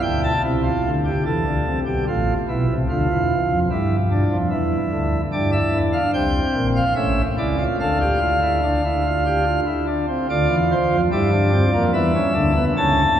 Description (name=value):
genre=classical, baroque-style 3-part fugue for pipe organ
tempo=73 BPM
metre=3/4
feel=straight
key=D minor from 5.3 s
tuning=A4 = 442 Hz
part: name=pipe organ, sparkling flutes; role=solo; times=0.0-13.2 s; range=A1 to A5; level=-17 LUFS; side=equal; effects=none
room=wet cathedral reverb, RT60 6.5 s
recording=heard from further back in the room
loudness=-17 LUFS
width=side -10 dB against mid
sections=0.4-10.3 A section; 10.3-13.2 B section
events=none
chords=0.4 C; 2.1 F/A; 2.9 Dmadd9; 4.5 Dsus2; 5.3 Em7b5; 7.0 A; 7.8 Dm; 11.9 E5